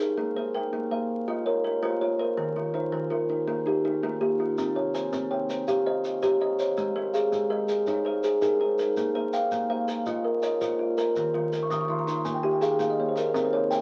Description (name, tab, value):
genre	southern african traditional, mbira-style interlocking cycle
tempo	109 BPM (dotted quarters)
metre	12/8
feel	straight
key	Bb dorian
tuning	A4 = 440 Hz
part	kalimba	arpeggios	0.0-13.8 s	Eb3 to G5	-29 LUFS	equal	none
part	kalimba	arpeggios	0.0-13.8 s	C3 to Eb6	-31 LUFS	equal	none
part	shekere	percussion	4.6-13.8 s	none	-47 LUFS	equal	none
room	moderate studio reverb, RT60 0.6 s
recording	very old 78 rpm record, vinyl crackle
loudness	-27 LUFS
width	mono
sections	0.2-9.0 A section; 9.0-13.8 B section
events	kalimba fill 11.4-13.3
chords	0.2 Bbm; 2.4 Eb; 4.6 Cm; 6.8 Ab; 9.0 Bbm; 11.2 Eb